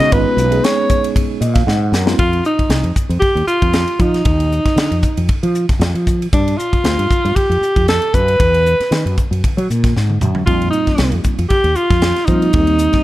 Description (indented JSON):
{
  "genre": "electric jazz fusion",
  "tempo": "116 BPM",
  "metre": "4/4",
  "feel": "swing 55% on 16ths",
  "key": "unclear",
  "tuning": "A4 = 440 Hz",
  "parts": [
    { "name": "breathy alto saxophone", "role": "melody", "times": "0.0-13.0 s", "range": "D4 to Eb5", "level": "-16 LUFS", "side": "equal", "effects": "slapback echo" },
    { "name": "mellow tine electric piano", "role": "accompaniment", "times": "0.0-2.2, 10.5-13.0 s", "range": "G3 to Gb5", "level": "-20 LUFS", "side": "equal", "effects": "medium stereo tremolo" },
    { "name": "fretless electric bass", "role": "bass", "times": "0.0-13.0 s", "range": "Ab1 to Gb3", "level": "-17 LUFS", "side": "equal", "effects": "wide subtle chorus" },
    { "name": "crisp fusion drum kit", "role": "drums", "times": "0.0-13.0 s", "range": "hi-hat, kick drum, ride cymbal, snare drum, toms", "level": "-18 LUFS", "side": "equal", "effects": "none" }
  ],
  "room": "little or no reverb",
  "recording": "dark, warm production",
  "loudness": "-13 LUFS",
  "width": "side -16 dB against mid",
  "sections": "0.0-2.2 A section; 2.2-13.0 B section",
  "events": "alto saxophone solo 0.0-2.2; tine electric piano fill 1.2-2.2; drum fill 1.7-2.2, 9.9-10.5",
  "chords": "0.0 Db9sus4; 2.2 F5; 6.3 G5; 8.1 Gb7sus4; 10.5 F9sus4"
}